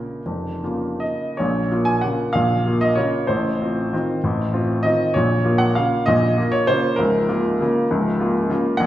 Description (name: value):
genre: classical, piano waltz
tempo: 154-212 BPM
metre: 3/4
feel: rubato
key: Bb minor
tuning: A4 = 444 Hz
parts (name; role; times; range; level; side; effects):
- clear upright piano; solo; 0.0-8.9 s; Db1 to Ab5; -18 LUFS; equal; none
room: wet recital hall reverb, RT60 1.5 s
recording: heard from further back in the room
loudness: -18 LUFS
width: side -13 dB against mid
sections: 0.0-1.4 A section; 1.4-8.9 B section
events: none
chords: 0.0 Bbm; 3.3 F7/A; 5.2 Bbm; 7.0 Bbm/Db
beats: | 0.25 0.62 1.01 | 1.38 1.71 2.03 | 2.34 2.65 2.97 | 3.29 3.60 3.92 | 4.24 4.54 4.85 | 5.15 5.45 5.76 | 6.07 6.37 6.69 | 6.98 7.28 7.59 | 7.90 8.19 8.49 | 8.79